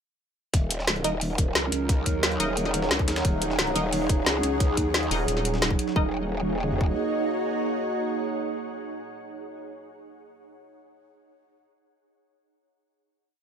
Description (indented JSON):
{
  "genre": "dark technical drum and bass",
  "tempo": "177 BPM",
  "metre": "4/4",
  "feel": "straight",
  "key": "Eb minor",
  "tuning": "A4 = 438 Hz",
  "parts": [
    { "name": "dark analog pad", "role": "sustained chords", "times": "0.8-9.4 s", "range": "Gb3 to Eb5", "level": "-31 LUFS", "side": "equal", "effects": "chorus, phaser, sidechain pumping" },
    { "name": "growl bass", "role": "bass", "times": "0.5-6.9 s", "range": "Eb1 to Eb2", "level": "-28 LUFS", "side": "equal", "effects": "chorus, tube saturation" },
    { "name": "breakbeat sampler-style drum kit", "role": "drums", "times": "0.5-6.0 s", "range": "hi-hat, snare drum", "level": "-36 LUFS", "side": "equal", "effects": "none" },
    { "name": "drum and bass drum kit", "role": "drums", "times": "0.5-6.9 s", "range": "kick drum, toms", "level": "-25 LUFS", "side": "equal", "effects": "none" },
    { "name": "drum and bass drum kit", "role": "drums", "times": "0.5-5.9 s", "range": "hi-hat, snare drum", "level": "-26 LUFS", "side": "left 1 dB", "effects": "none" },
    { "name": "ethereal airy pad", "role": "texture", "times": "1.7-9.4 s", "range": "Eb4 to Gb5", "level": "-31 LUFS", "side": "right 2 dB", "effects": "ensemble chorus, built-in reverb, sidechain pumping" },
    { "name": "filtered dub chord stab", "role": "stabs", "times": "1.0-10.1 s", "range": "Eb4 to Eb5", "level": "-31 LUFS", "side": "left 1 dB", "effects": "phaser, tape echo" },
    { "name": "growling FM bass", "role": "bass", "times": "5.1-5.8 s", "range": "Eb1", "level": "-28 LUFS", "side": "equal", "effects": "none" }
  ],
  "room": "light reverb",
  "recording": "none",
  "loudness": "-23 LUFS",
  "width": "side -7 dB against mid",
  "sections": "0.5-6.0 drop; 6.0-8.7 final chord",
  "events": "drop 0.5-6.0",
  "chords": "0.5 Ebm"
}